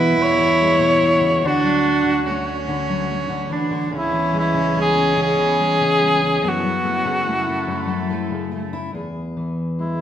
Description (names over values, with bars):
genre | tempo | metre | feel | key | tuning
acoustic folk-pop ballad | 48 BPM (dotted quarters) | 6/8 | straight | E mixolydian | A4 = 441 Hz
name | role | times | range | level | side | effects
warm cor anglais | melody | 0.0-10.0 s | E4 to C#5 | -19 LUFS | left 1 dB | none
warm cello | second line | 0.0-8.9 s | A3 to E4 | -22 LUFS | right 4 dB | none
fingerpicked steel-string acoustic guitar | accompaniment | 0.0-10.0 s | E2 to G#4 | -23 LUFS | left 2 dB | none
warm studio string section | sustained chords | 0.0-8.9 s | C#2 to C#5 | -32 LUFS | equal | none
room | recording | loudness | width
wet large studio reverb, RT60 1.4 s | band playing live in one room | -17 LUFS | side -10 dB against mid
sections
0.0-9.0 A section; 9.0-10.0 B section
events
none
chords
0.0 E69; 1.4 Dmaj7; 3.9 C#m7; 6.4 F#m7; 9.0 E